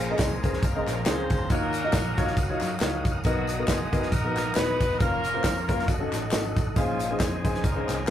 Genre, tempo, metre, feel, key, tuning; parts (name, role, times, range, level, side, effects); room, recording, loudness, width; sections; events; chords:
uptempo gospel; 137 BPM; 4/4; swing 55% on 8ths; Bb minor; A4 = 440 Hz
warm horn section; melody; 0.0-8.1 s; F3 to C5; -31 LUFS; left 1 dB
warm grand piano; accompaniment; 0.0-8.1 s; Bb2 to Eb5; -30 LUFS; left 2 dB
tonewheel organ; sustained chords; 0.0-8.1 s; Ab4 to Eb6; -35 LUFS; right 1 dB; fast rotary speaker, chorus vibrato
fingered electric bass; bass; 0.0-8.1 s; D#1 to Gb2; -33 LUFS; equal
modern studio drum kit; drums; 0.0-8.1 s; hi-hat, kick drum, snare drum; -26 LUFS; equal
handclaps and tambourine; percussion; 0.2-8.1 s; -39 LUFS; left 3 dB
wet small room reverb, RT60 0.5 s; rough rehearsal-room recording; -23 LUFS; side -11 dB against mid
0.0-8.1 A section
0.0 Bbm9; 1.5 Ebm9; 3.3 Bmaj7; 5.0 Bbm/F; 5.9 F7b9b13; 6.8 Bbm11